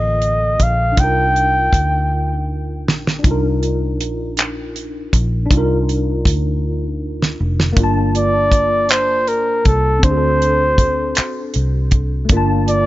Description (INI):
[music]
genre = slow six-eight R&B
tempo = 53 BPM (dotted quarters)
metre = 6/8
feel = straight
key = unclear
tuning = A4 = 437 Hz
[part]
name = breathy flugelhorn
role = melody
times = 0.0-2.5, 8.2-12.9 s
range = A4 to G5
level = -17 LUFS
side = equal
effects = none
[part]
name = tine electric piano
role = accompaniment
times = 0.0-12.9 s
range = D3 to A5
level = -22 LUFS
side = left 1 dB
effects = ensemble chorus
[part]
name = vintage muted fingered electric bass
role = bass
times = 0.0-12.9 s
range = F1 to D2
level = -19 LUFS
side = equal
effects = none
[part]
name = damped 70s drum kit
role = drums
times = 0.2-12.9 s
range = handclaps, hi-hat, kick drum, snare drum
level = -16 LUFS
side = equal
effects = none
[sound]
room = small room reverb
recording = nothing above 7.5 kHz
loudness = -14 LUFS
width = side -16 dB against mid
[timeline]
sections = 0.0-3.2 A section; 3.2-7.8 B section; 7.8-12.9 C section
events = drum fill 2.1-3.2, 6.6-7.8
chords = 0.0 Gm9 (rootless); 1.0 Cm11; 7.8 Gm9; 10.0 D7; 12.3 Gm9